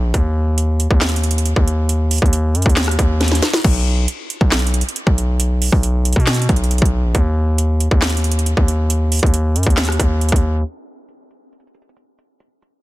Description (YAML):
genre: hip hop, trap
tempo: 137 BPM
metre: 4/4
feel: half-time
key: Eb minor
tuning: A4 = 440 Hz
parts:
  - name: distorted 808-style bass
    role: bass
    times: 0.0-10.6 s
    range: Bb1 to Cb3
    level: -16 LUFS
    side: equal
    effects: distortion
  - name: trap drum kit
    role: drums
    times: 0.1-12.7 s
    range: crash cymbal, handclaps, hi-hat, kick drum, rim click, snare drum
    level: -17 LUFS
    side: equal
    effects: overdrive
room: little or no reverb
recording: dense, heavily limited modern master, low-pass filter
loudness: -14 LUFS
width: side -18 dB against mid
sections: 0.0-10.7 A section; 10.7-12.8 B section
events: drum fill 3.2-3.6; filter sweep 10.7-12.8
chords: none